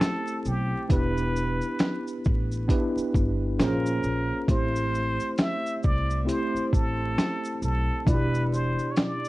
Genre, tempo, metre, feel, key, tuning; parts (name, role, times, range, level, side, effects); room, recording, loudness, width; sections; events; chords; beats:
lo-fi hip hop; 67 BPM; 4/4; swing 60% on 16ths; A minor; A4 = 442 Hz
trumpet with plunger mute; melody; 0.0-9.3 s; G4 to E5; -32 LUFS; equal; low-pass filter
mellow tine electric piano; accompaniment; 0.0-9.3 s; B2 to D5; -29 LUFS; right 1 dB; medium stereo tremolo, low-pass filter, plate reverb
dusty soul sampler-style drum kit; drums; 0.0-9.3 s; hi-hat, kick drum, shaker, snare drum; -25 LUFS; equal; overdrive, vintage 12-bit sampler grit
upright bass; bass; 0.5-8.7 s; E1 to C2; -28 LUFS; equal
moderate studio reverb, RT60 0.6 s; vinyl crackle, nothing above 10.9 kHz; -23 LUFS; side -18 dB against mid
0.0-9.3 A section
0.0 Am7; 0.9 Em7; 3.6 Bbm7; 4.5 Am7; 8.1 Em7
0.01 | 0.90 1.80 2.69 3.59 | 4.48 5.38 6.27 7.17 | 8.06 8.96